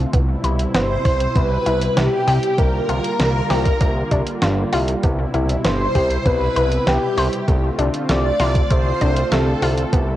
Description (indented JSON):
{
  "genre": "synthwave",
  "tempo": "98 BPM",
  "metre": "4/4",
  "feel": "straight",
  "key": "C major",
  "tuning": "A4 = 439 Hz",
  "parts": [
    { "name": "warm analog pad", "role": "sustained chords", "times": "0.0-10.2 s", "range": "B2 to F4", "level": "-25 LUFS", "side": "equal", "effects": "chorus, sidechain pumping" },
    { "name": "analog pluck", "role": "arpeggios", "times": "0.0-10.2 s", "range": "A3 to C5", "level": "-26 LUFS", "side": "left 2 dB", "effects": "chorus, analog delay" },
    { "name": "fat analog bass", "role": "bass", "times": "0.0-10.2 s", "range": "G1 to C2", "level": "-20 LUFS", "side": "equal", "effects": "tube saturation" },
    { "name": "clean 12-bit digital drum machine", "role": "drums", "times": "0.1-10.1 s", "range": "hi-hat, snare drum", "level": "-25 LUFS", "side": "equal", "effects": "cassette tape" },
    { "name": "electronic kick drum", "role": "drums", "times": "0.1-10.1 s", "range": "none", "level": "-19 LUFS", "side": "equal", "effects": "cassette tape" },
    { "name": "warm velvety synth lead", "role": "melody", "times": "0.7-9.9 s", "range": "G4 to D5", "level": "-22 LUFS", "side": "equal", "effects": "chorus, tape echo" },
    { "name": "string machine, violins", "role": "second line", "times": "0.7-9.9 s", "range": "G4 to D5", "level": "-28 LUFS", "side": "equal", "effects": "ensemble chorus, analog delay" }
  ],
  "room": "light reverb, digital ambience",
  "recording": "home recording on cassette",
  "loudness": "-16 LUFS",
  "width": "side -13 dB against mid",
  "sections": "0.0-10.2 A section",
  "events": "none",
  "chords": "0.1 Cmaj7; 2.6 Bb6/C; 5.0 Cmaj7; 7.5 Dm7/C"
}